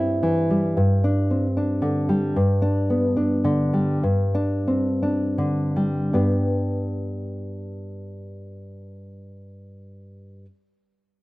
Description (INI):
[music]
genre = romantic piece for solo classical guitar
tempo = 51-77 BPM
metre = 2/4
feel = rubato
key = G major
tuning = A4 = 440 Hz
[part]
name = nylon-string guitar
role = solo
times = 0.0-10.5 s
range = G2 to B4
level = -21 LUFS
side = equal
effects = none
[sound]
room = studio ambience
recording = dry, close 1970s-style studio recording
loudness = -20 LUFS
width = side -19 dB against mid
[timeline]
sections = 0.0-6.1 A section; 6.1-10.4 B section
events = slowing down 1.6-6.1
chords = 0.0 C/G; 0.8 Gsus4; 2.4 G; 4.0 Gsus4; 6.1 G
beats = | 0.77 1.56 | 2.36 3.15 | 4.02 5.02 | 6.14 7.20 | 8.27 9.35